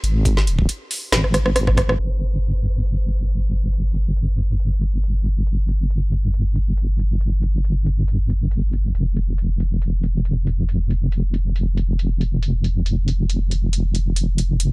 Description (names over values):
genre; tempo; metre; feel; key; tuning
deep dubstep; 138 BPM; 4/4; swing 54% on 16ths, half-time; unclear; A4 = 440 Hz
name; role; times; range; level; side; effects
deep soft wobble bass; bass; 0.0-14.7 s; F1 to Ab1; -18 LUFS; equal; chorus, transformer saturation
garage drum kit; drums; 0.0-14.7 s; hi-hat, rim click, snare drum; -23 LUFS; right 1 dB; overdrive, small room ambience
electronic kick drum; drums; 0.3-1.9 s; none; -19 LUFS; equal; overdrive, small room ambience
room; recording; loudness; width
little or no reverb; dry, gritty hardware recording, low-pass filter; -18 LUFS; side -28 dB against mid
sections
0.0-2.0 A section; 2.0-14.7 B section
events
drum fill 1.1-2.0; band accent 1.9; filter sweep 2.0-14.7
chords
none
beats
| 0.25 0.69 1.12 1.56 | 1.99 2.43 2.86 3.30 | 3.73 4.17 4.60 5.04 | 5.47 5.91 6.34 6.78 | 7.21 7.64 8.08 8.52 | 8.95 9.38 9.82 10.25 | 10.69 11.12 11.56 11.99 | 12.43 12.86 13.30 13.73 | 14.17 14.60